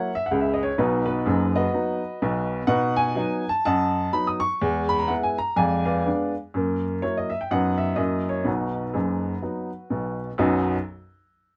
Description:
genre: jazz, stride piano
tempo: 125 BPM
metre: 4/4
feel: swing 59% on 8ths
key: B major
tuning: A4 = 440 Hz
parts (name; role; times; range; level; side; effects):
- warm upright piano; solo; 0.0-10.8 s; F#1 to D#6; -24 LUFS; equal; none
room: light reverb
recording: dark, warm production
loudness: -24 LUFS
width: mono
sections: 0.0-10.4 A section; 10.4-11.6 B section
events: none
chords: 0.0 F#7; 0.8 B; 4.6 E; 5.6 Fdim7; 6.5 F#7; 7.5 B/F#; 8.0 F#7; 8.5 B

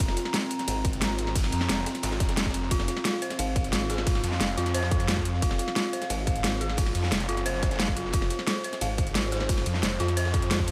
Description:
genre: dark technical drum and bass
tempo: 177 BPM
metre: 4/4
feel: straight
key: F phrygian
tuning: A4 = 444 Hz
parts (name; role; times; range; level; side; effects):
- dark analog pad; sustained chords; 0.0-10.7 s; C4 to Bb5; -37 LUFS; equal; chorus, sidechain pumping
- snarling distorted saw bass; bass; 0.0-10.7 s; F1 to F2; -32 LUFS; equal; distortion, overdrive, sidechain pumping
- crunchy breakbeat drum kit; drums; 0.0-10.7 s; hi-hat, ride cymbal, snare drum; -41 LUFS; equal; none
- dubstep drum kit; drums; 0.0-10.7 s; hi-hat, ride cymbal, snare drum; -32 LUFS; equal; none
- electronic kick drum; drums; 0.0-10.7 s; none; -30 LUFS; equal; none
- dark detuned synth bell; arpeggios; 2.7-10.7 s; F4 to F5; -35 LUFS; equal; chorus, sidechain pumping, dub echo
room: light reverb, small room ambience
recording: none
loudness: -27 LUFS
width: mono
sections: 0.0-10.7 A section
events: none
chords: 0.0 F5

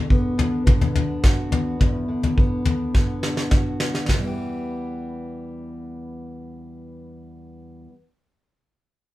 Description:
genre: indie folk with a building arrangement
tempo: 105 BPM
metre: 4/4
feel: straight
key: E minor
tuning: A4 = 440 Hz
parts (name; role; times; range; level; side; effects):
- fingerpicked steel-string acoustic guitar; accompaniment; 0.0-8.0 s; E2 to G4; -27 LUFS; left 1 dB; none
- soft brush drum kit; drums; 0.1-4.2 s; hi-hat, kick drum, snare drum, toms; -20 LUFS; equal; none
room: light reverb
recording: band playing live in one room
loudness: -19 LUFS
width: side -16 dB against mid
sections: 0.0-4.1 A section; 4.1-6.4 B section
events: drum fill 3.0-4.1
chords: 0.0 Bm/E; 4.1 Em

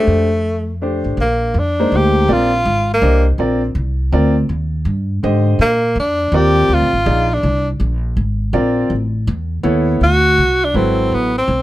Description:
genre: jazz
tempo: 163 BPM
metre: 3/4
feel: swing 64% on 8ths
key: Bb mixolydian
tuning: A4 = 438 Hz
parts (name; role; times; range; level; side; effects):
- breathy tenor saxophone; melody; 0.0-3.3, 5.6-7.7, 10.0-11.6 s; A3 to G4; -15 LUFS; equal; none
- warm concert grand piano; accompaniment; 0.0-11.3 s; D3 to F5; -18 LUFS; equal; none
- upright bass; bass; 0.1-11.6 s; Ab1 to Bb2; -17 LUFS; equal; none
room: light reverb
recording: close, detailed microphones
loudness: -13 LUFS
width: side -15 dB against mid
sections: 0.0-1.2 A section; 1.2-10.0 B section; 10.0-11.6 C section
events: none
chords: 0.0 F; 1.2 Bb7; 3.4 Ab/Bb; 5.6 Bb7; 7.8 Ab; 8.9 A; 10.0 D7

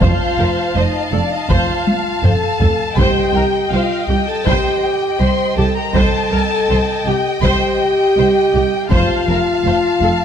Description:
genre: cinematic, epic orchestral film score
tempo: 81 BPM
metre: 4/4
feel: straight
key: C dorian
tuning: A4 = 439 Hz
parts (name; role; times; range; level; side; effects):
- dark symphonic violin section; melody; 0.0-10.2 s; D5 to C6; -22 LUFS; left 2 dB; none
- warm symphonic violin section; second line; 0.0-10.2 s; Eb5 to A5; -23 LUFS; left 2 dB; none
- warm symphonic viola section; accompaniment; 0.0-10.1 s; G4 to C5; -23 LUFS; right 1 dB; none
- warm French horn section; sustained chords; 0.0-10.2 s; D4 to C5; -18 LUFS; left 1 dB; none
- dark symphonic cello section; bass; 0.0-10.1 s; C2 to F2; -21 LUFS; right 3 dB; none
- rich symphonic double bass section; bass; 0.0-10.1 s; F1 to C2; -22 LUFS; right 2 dB; none
- taiko ensemble; drums; 0.0-9.6 s; none; -19 LUFS; equal; none
room: moderate concert hall reverb, RT60 2.0 s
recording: none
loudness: -13 LUFS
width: side -8 dB against mid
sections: 0.0-10.2 A section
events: drum fill 1.9-3.0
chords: 0.0 F; 3.0 Cm; 8.9 F

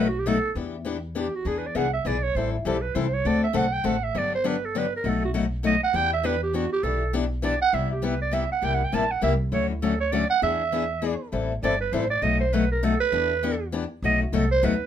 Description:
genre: acoustic string swing (jazz manouche)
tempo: 201 BPM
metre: 3/4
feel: swing 58% on 8ths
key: E minor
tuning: A4 = 440 Hz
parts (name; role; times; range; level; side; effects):
- growling clarinet; melody; 0.0-14.9 s; E4 to A5; -25 LUFS; right 5 dB; none
- picked steel-string acoustic guitar; accompaniment; 0.0-14.7 s; B2 to A4; -26 LUFS; left 6 dB; none
- upright bass; bass; 0.0-14.9 s; G1 to E2; -29 LUFS; equal; none
room: moderate studio reverb, RT60 0.5 s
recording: minimal, uncompressed stereo recording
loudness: -22 LUFS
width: side -10 dB against mid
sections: 0.6-7.7 A section; 7.7-14.9 A section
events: clarinet solo 0.6-14.9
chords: 0.0 B7; 0.6 Em7; 1.5 E7; 2.4 Am9; 3.2 D7; 4.1 Gmaj7; 5.0 B7; 5.9 Em7; 7.7 Cmaj7; 8.6 C7; 9.5 Dmaj7; 10.4 E7; 11.3 Am7; 12.2 B7; 13.1 Em7; 14.0 B7

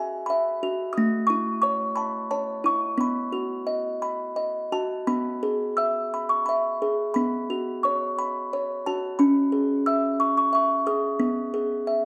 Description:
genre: children's music, lullaby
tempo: 88 BPM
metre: 3/4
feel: rubato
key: E major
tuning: A4 = 443 Hz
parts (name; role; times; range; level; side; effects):
- music box; solo; 0.0-12.1 s; A3 to E6; -25 LUFS; equal; none
room: moderate recital hall reverb, RT60 1.5 s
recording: dark, warm production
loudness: -25 LUFS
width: mono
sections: 0.0-5.1 A section; 5.1-12.1 B section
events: none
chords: 0.0 Eadd9; 1.0 A; 3.0 B; 5.1 E; 7.2 Bsus2; 9.2 C#m; 11.2 E/B

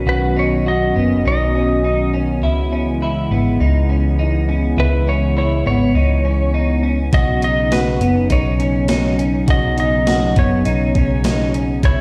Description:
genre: dream pop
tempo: 102 BPM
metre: 4/4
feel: straight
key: B major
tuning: A4 = 440 Hz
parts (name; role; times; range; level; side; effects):
- hollow soft pad; sustained chords; 0.0-12.0 s; C#3 to F#4; -22 LUFS; equal; chorus
- clean electric guitar; arpeggios; 0.0-12.0 s; B3 to F#4; -25 LUFS; equal; analog chorus, delay
- hollow-body short-scale picked electric bass; bass; 0.0-12.0 s; F#1 to C#2; -21 LUFS; equal; none
- clean lap steel guitar; melody; 0.1-12.0 s; B4 to D#5; -24 LUFS; equal; delay
- gated 80s digital drum machine; drums; 7.1-12.0 s; hi-hat, kick drum, snare drum; -20 LUFS; equal; gated reverb, gated reverb snare, overdrive
room: moderate plate reverb, RT60 1.3 s, digital ambience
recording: played on a big sound system in a bare room, stone room reverb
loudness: -17 LUFS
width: mono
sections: 0.0-12.0 A section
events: none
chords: 0.0 Badd9; 2.4 C#m7; 7.1 Badd9

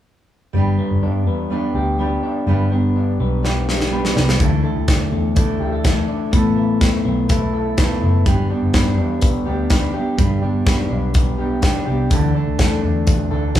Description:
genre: jangly indie pop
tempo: 124 BPM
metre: 4/4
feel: straight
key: G major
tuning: A4 = 440 Hz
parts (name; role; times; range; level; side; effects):
- fingerpicked steel-string acoustic guitar; accompaniment; 0.5-13.6 s; D3 to A4; -23 LUFS; right 5 dB; none
- electric guitar through a small old amp; arpeggios; 0.5-13.6 s; D3 to A4; -22 LUFS; left 4 dB; none
- vintage muted picked electric bass; bass; 0.5-13.6 s; F#1 to D3; -21 LUFS; equal; none
- modern studio drum kit; drums; 3.4-13.6 s; hi-hat, kick drum, snare drum; -19 LUFS; equal; none
room: moderate large studio reverb, RT60 1.1 s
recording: band playing live in one room, small room ambience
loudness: -16 LUFS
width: side -12 dB against mid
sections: 0.5-8.3 A section; 8.3-13.6 B section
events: drum fill 3.4-4.4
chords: 0.5 G; 4.4 Dsus2; 6.3 Asus2; 8.3 G; 12.1 Dsus2

